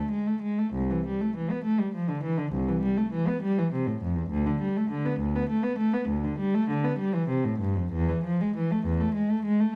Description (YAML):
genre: classical, baroque-style suite movement for unaccompanied cello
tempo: 66 BPM (dotted quarters)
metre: 12/8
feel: rubato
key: A minor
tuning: A4 = 439 Hz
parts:
  - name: dark cello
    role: solo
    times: 0.0-9.8 s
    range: C2 to B3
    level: -27 LUFS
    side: equal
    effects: none
room: moderate recital hall reverb, RT60 1.4 s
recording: close, detailed microphones, vinyl crackle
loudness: -28 LUFS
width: mono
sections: 0.0-9.8 A section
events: none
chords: none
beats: | 0.74 1.65 2.53 3.41 | 4.30 5.18 6.08 6.99 | 7.93 8.86